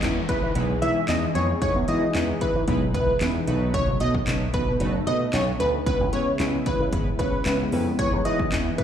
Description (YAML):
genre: dance-pop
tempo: 113 BPM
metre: 4/4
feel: straight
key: E major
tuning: A4 = 438 Hz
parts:
  - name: chorused polysynth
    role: accompaniment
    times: 0.0-8.8 s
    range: G#3 to C#5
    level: -29 LUFS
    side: equal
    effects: sidechain pumping, slapback echo
  - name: warm analog pad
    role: sustained chords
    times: 0.0-8.8 s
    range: C#3 to G#4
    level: -32 LUFS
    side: left 2 dB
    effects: chorus, sidechain pumping
  - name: slap bass with an envelope filter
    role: bass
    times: 0.0-8.8 s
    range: F#1 to E3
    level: -26 LUFS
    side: equal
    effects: sidechain pumping
  - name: house drum kit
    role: drums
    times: 0.0-8.8 s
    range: handclaps, hi-hat, kick drum, snare drum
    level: -28 LUFS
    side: equal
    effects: overdrive
  - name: downlifter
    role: sound effects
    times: 0.0-3.7 s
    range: none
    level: -37 LUFS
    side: left 1 dB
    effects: slapback echo
  - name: plucky unison lead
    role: melody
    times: 0.3-8.8 s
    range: B4 to E5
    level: -27 LUFS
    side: equal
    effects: sidechain pumping, slapback echo, ping-pong delay
room: light reverb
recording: live gig heard through the venue's PA, club reverb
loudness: -21 LUFS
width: side -9 dB against mid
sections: 0.0-8.8 A section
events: none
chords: 0.0 Emaj7; 3.5 B7; 5.9 C#m7; 8.0 Emaj7